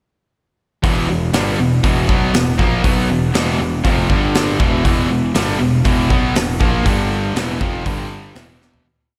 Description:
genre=hard rock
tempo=120 BPM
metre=4/4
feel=straight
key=E minor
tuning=A4 = 443 Hz
part: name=crunchy overdriven guitar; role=riff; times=0.8-8.8 s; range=E2 to B3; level=-24 LUFS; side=equal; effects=none
part: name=tight distorted guitar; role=riff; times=0.8-8.8 s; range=E2 to B3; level=-22 LUFS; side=equal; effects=distortion
part: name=fuzz picked electric bass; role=bass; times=0.8-8.8 s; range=E1 to B1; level=-24 LUFS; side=equal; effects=overdrive
part: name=big rock drum kit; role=drums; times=0.8-8.8 s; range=hi-hat, kick drum, snare drum, toms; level=-21 LUFS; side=equal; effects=none
room=moderate lush hall reverb, RT60 2.6 s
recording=big arena sound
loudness=-16 LUFS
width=mono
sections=0.8-8.9 riff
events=fade-out 6.9-8.9; drum fill 8.6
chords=0.8 Em; 4.1 G5; 4.6 Em; 6.9 G5; 7.4 E5; 7.9 G5; 8.4 E5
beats=| 0.84 1.34 1.84 2.34 | 2.84 3.34 3.84 4.35 | 4.85 5.35 5.85 6.35 | 6.86 7.36 7.86 8.36

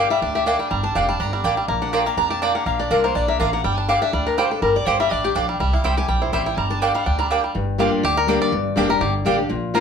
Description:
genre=bluegrass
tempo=246 BPM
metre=4/4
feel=swing 54% on 8ths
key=G dorian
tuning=A4 = 440 Hz
part: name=bluegrass banjo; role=melody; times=0.0-9.8 s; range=G3 to D5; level=-23 LUFS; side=equal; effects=none
part: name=picked steel-string acoustic guitar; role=accompaniment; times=0.0-9.8 s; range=G2 to Bb5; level=-22 LUFS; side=left 3 dB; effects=none
part: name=mandolin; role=stabs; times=0.0-9.8 s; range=Bb3 to Bb5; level=-23 LUFS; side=right 4 dB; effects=none
part: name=upright bass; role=bass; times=0.0-9.8 s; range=F1 to F2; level=-25 LUFS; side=equal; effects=none
room=wet studio reverb, RT60 0.6 s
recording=band playing live in one room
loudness=-18 LUFS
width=side -6 dB against mid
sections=0.0-7.6 A section; 7.6-9.8 A section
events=steel-string acoustic guitar solo 0.0-7.6; five-string banjo solo 7.6-9.8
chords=0.0 Gm; 1.7 Bb; 3.6 Gm; 5.6 C; 6.6 Gm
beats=0.22 0.47 | 0.71 0.95 1.20 1.44 | 1.69 1.93 2.17 2.42 | 2.66 2.91 3.15 3.40 | 3.64 3.89 4.13 4.38 | 4.62 4.86 5.11 5.35 | 5.60 5.84 6.09 6.33 | 6.57 6.82 7.06 7.31 | 7.55 7.79 8.04 8.28 | 8.53 8.77 9.02 9.26 | 9.50 9.75

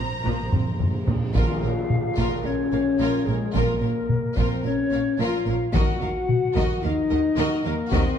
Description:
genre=cinematic, epic orchestral film score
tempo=109 BPM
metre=4/4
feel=straight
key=Bb minor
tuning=A4 = 440 Hz
part: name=rich studio violin section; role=melody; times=0.0-8.2 s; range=Bb4 to Bb5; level=-36 LUFS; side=left 1 dB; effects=none
part: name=clear symphonic violin section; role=second line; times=0.0-8.2 s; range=F4 to Eb5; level=-35 LUFS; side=left 3 dB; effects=none
part: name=clear symphonic viola section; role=accompaniment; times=0.0-8.2 s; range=F3 to Bb4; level=-33 LUFS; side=equal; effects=none
part: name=clear symphonic double bass section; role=bass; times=0.0-8.0 s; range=Bb1 to Eb2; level=-30 LUFS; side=right 4 dB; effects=none
part: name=rich symphonic cello section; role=bass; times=0.0-8.0 s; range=Bb2 to Eb3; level=-30 LUFS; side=right 3 dB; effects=none
part: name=timpani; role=percussion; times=0.0-2.1 s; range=Bb2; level=-30 LUFS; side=right 1 dB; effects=none
part: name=dark French horn section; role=sustained chords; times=0.2-8.2 s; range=F3 to Gb4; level=-25 LUFS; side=left 4 dB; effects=none
part: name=taiko ensemble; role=drums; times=0.3-8.2 s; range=none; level=-25 LUFS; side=equal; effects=none
part: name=mellow hollow silver concert flute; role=second line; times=1.3-8.2 s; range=Ab4 to Gb5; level=-33 LUFS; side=left 1 dB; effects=none
part: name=tam-tam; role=percussion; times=1.3-3.5 s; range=none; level=-37 LUFS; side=left 1 dB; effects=none
room=wet recital hall reverb, RT60 1.7 s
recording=dark, warm production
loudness=-21 LUFS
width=side -8 dB against mid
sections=0.0-1.4 A section; 1.4-8.2 B section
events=timpani fill 0.0-1.4; drum fill 0.5-1.4; band accent 1.4-1.9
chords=0.0 Bbsus2; 1.4 Bbm; 5.7 Ebm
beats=0.25 0.80 | 1.35 1.90 2.45 3.00 | 3.55 4.09 4.64 5.19 | 5.74 6.29 6.83 7.38 | 7.93

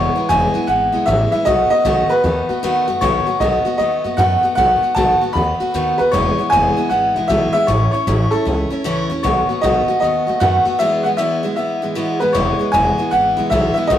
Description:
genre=rock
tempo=154 BPM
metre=4/4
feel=swing 65% on 8ths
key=E major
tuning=A4 = 439 Hz
part: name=clear upright piano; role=melody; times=0.0-13.9 s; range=A4 to B5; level=-17 LUFS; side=equal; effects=none
part: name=picked steel-string acoustic guitar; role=accompaniment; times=0.0-14.0 s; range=E2 to F#4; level=-19 LUFS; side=equal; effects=none
part: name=upright bass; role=bass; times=0.0-14.0 s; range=E1 to F#2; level=-21 LUFS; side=equal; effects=none
room=moderate stone room reverb, RT60 1.1 s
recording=rough rehearsal-room recording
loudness=-14 LUFS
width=side -11 dB against mid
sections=0.0-12.4 A section; 12.4-14.0 A section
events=break 10.8-12.4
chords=0.0 E; 1.5 B7; 6.1 E; 7.7 A; 9.2 B7; 10.8 E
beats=0.30 0.69 1.07 | 1.46 1.85 2.24 2.63 | 3.02 3.40 3.79 4.18 | 4.57 4.96 5.35 5.74 | 6.13 6.52 6.91 7.29 | 7.68 8.07 8.46 8.85 | 9.24 9.63 10.02 10.41 | 10.80 11.19 11.57 11.96 | 12.35 12.74 13.13 13.52 | 13.91

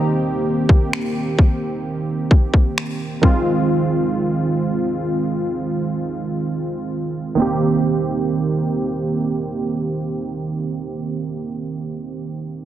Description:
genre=contemporary R&B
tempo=65 BPM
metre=4/4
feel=straight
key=C minor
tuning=A4 = 440 Hz
part: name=warm analog keys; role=accompaniment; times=0.0-12.7 s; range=Eb3 to G4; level=-20 LUFS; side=right 2 dB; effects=chorus, low-pass filter
part: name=trap drum kit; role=drums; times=0.7-3.4 s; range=finger snaps, kick drum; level=-15 LUFS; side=equal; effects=overdrive, vintage 12-bit sampler grit, soft clipping on snare
room=light reverb, digital ambience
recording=dense, heavily limited modern master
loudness=-18 LUFS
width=side -11 dB against mid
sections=0.0-7.4 A section; 7.4-11.1 B section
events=filter sweep on synth keys 0.0-7.4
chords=0.0 Cm7; 3.2 Fm7; 7.4 Cm7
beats=| 0.00 0.92 1.84 2.77 | 3.69 4.61 5.53 6.46 | 7.38 8.30 9.23 10.15

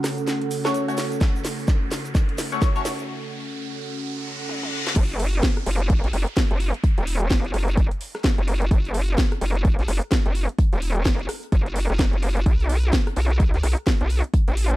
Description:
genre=bass house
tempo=128 BPM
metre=4/4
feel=swing 60% on 16ths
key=F# minor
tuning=A4 = 441 Hz
part: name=dark analog pad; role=sustained chords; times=0.0-4.9 s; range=C#4 to F#5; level=-29 LUFS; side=right 1 dB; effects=chorus, sidechain pumping
part: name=house drum kit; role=drums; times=0.0-14.8 s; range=crash cymbal, hi-hat, rim click, snare drum, toms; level=-28 LUFS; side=equal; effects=high-pass filter on hats, high-pass filter on snare, high-pass filter on toms, high-pass filter on cymbals
part: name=tube shaker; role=percussion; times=0.0-3.1 s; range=none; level=-40 LUFS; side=right 2 dB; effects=none
part: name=riser, reverse cymbal and downlifter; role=sound effects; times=0.4-8.7 s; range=none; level=-35 LUFS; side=equal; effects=none
part: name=band-passed chord stab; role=stabs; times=0.6-2.8 s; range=A3 to C#5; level=-27 LUFS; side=left 2 dB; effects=phaser, wide subtle chorus, vintage 12-bit sampler grit, sidechain pumping, tape echo
part: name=electronic kick drum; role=drums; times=1.2-14.4 s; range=none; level=-20 LUFS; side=equal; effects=none
part: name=vowel-sweep wobble bass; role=bass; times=5.0-14.8 s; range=E1 to D2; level=-22 LUFS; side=equal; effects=chorus, overdrive, sidechain pumping
part: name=damped 70s drum kit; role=drums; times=5.0-14.7 s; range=hi-hat, snare drum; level=-42 LUFS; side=left 3 dB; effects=none
room=little or no reverb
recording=dark, warm production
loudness=-20 LUFS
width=side -17 dB against mid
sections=0.0-5.0 A section; 5.0-14.8 B section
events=build-up 0.0-5.0; drum fill 0.0-3.1, 4.5-5.0; filter sweep on analog synth pad 0.0-5.0; riser 0.4-5.0; break 3.1-5.0; reverse cymbal 4.0-5.0; drop 5.0-14.8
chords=0.0 F#m; 5.0 N.C.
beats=0.27 0.74 | 1.21 1.68 2.15 2.62 | 3.09 3.56 4.02 4.49 | 4.96 5.43 5.90 6.37 | 6.84 7.30 7.77 8.24 | 8.71 9.18 9.65 10.12 | 10.59 11.05 11.52 11.99 | 12.46 12.93 13.40 13.87 | 14.34

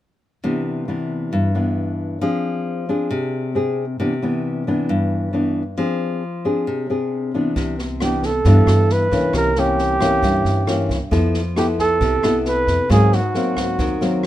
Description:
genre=bossa nova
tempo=135 BPM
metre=4/4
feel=straight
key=C major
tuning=A4 = 437 Hz
part: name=nylon-string guitar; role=accompaniment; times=0.4-14.3 s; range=G2 to A4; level=-19 LUFS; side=left 1 dB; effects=none
part: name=upright bass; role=bass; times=7.6-14.3 s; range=C2 to Ab2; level=-21 LUFS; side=equal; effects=none
part: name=open jazz drum kit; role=drums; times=7.6-14.3 s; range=kick drum, rim click, snare drum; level=-27 LUFS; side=right 1 dB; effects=none
part: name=mellow flugelhorn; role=melody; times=8.0-14.3 s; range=Gb4 to B4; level=-19 LUFS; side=right 2 dB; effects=none
room=little or no reverb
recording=minimal, uncompressed stereo recording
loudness=-17 LUFS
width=side -13 dB against mid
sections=0.4-7.6 A section; 7.6-14.3 B section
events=none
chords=0.4 Cmaj9; 2.2 Fm6; 4.0 Cmaj9; 5.8 Fm6; 7.6 Cmaj9; 9.3 C7b9; 11.1 Fmaj7#11; 12.9 Ab9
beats=| 0.43 0.88 1.32 1.77 | 2.21 2.66 3.10 3.55 | 4.00 4.44 4.89 5.33 | 5.78 6.22 6.67 7.11 | 7.56 8.00 8.45 8.89 | 9.34 9.78 10.23 10.67 | 11.12 11.56 12.01 12.45 | 12.89 13.34 13.79 14.23

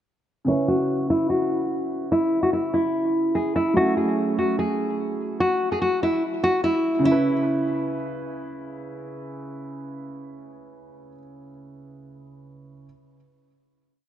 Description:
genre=hip hop, trap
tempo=146 BPM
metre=4/4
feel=half-time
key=C# minor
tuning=A4 = 440 Hz
part: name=dark grand piano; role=accompaniment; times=0.4-12.9 s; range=C#3 to B4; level=-27 LUFS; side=right 2 dB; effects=low-pass filter, tape echo
part: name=nylon-string guitar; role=melody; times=0.5-8.2 s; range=C#4 to G#4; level=-22 LUFS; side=left 1 dB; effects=low-pass filter, tape echo
room=moderate plate reverb, RT60 2.6 s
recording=echo-heavy mix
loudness=-20 LUFS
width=side -10 dB against mid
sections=0.5-7.1 breakdown; 7.1-10.3 final chord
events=filter sweep 0.5-7.1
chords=0.5 C#m7; 3.8 F#m7; 7.1 C#m7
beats=| 0.48 0.89 1.30 1.71 | 2.12 2.53 2.94 3.35 | 3.76 4.17 4.59 5.00 | 5.41 5.82 6.23 6.64 | 7.05 7.46 7.87 8.29 | 8.70 9.11 9.52 9.93

